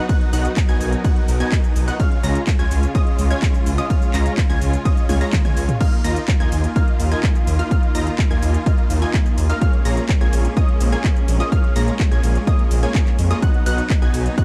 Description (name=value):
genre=EDM, festival progressive house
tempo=126 BPM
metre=4/4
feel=straight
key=Eb minor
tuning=A4 = 439 Hz
part: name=clear studio string section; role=sustained chords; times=0.0-14.4 s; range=Db3 to Bb4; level=-32 LUFS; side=equal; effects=sidechain pumping
part: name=unison pluck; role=arpeggios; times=0.0-14.4 s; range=Eb6 to Bb6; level=-33 LUFS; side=equal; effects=sidechain pumping, tape echo
part: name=supersaw stab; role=riff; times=0.0-14.4 s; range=Ab3 to Bb5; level=-28 LUFS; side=equal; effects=sidechain pumping, tape echo
part: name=electronic kick drum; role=drums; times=0.1-14.4 s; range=none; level=-20 LUFS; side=equal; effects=overdrive
part: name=house drum kit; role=drums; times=0.1-14.4 s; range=crash cymbal, handclaps, hi-hat, ride cymbal, shaker, toms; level=-32 LUFS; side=equal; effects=overdrive
part: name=detuned saw bass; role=bass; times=0.3-14.3 s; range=Bb1 to F2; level=-22 LUFS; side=equal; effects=chorus, sidechain pumping
room=little or no reverb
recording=dark, warm production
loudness=-18 LUFS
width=mono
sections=0.0-5.8 A section; 5.8-14.4 A section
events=drop 0.0-5.8, 5.8-14.4; drum fill 5.1-5.8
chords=0.0 B; 2.0 Db; 5.8 Ebsus2; 9.6 Bbm7; 13.4 B